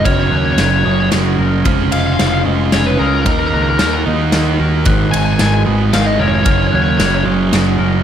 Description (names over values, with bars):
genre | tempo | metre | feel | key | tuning
post-rock | 112 BPM | 3/4 | straight | unclear | A4 = 440 Hz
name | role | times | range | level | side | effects
biting overdriven guitar | melody | 0.0-7.2 s | A#4 to G#5 | -19 LUFS | left 4 dB | spring reverb, analog delay
evolving wavetable pad | sustained chords | 0.1-8.0 s | C#4 to G#5 | -26 LUFS | left 5 dB | chorus, built-in reverb
glockenspiel with soft plastic mallets | arpeggios | 0.0-7.8 s | D#6 to G#6 | -26 LUFS | right 4 dB | analog delay
twangy electric guitar | arpeggios | 0.0-8.0 s | G#2 to A#4 | -24 LUFS | left 4 dB | analog chorus, analog delay
thick fuzz guitar | riff | 0.0-8.0 s | F#2 to D#4 | -17 LUFS | right 6 dB | distortion
fuzz picked electric bass | bass | 0.0-8.0 s | E#1 to D#2 | -18 LUFS | left 1 dB | overdrive
big rock drum kit | drums | 0.1-7.7 s | kick drum, ride cymbal, snare drum | -18 LUFS | left 1 dB | none
room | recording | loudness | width
light reverb, studio reverb | none | -11 LUFS | side -9 dB against mid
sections
0.0-8.0 A section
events
none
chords
0.1 F#; 1.7 C#/E#; 3.3 D#m; 4.9 G#madd9; 6.5 F#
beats
| 0.05 0.59 1.12 | 1.66 2.19 2.73 | 3.26 3.80 4.33 | 4.87 5.40 5.93 | 6.47 7.00 7.53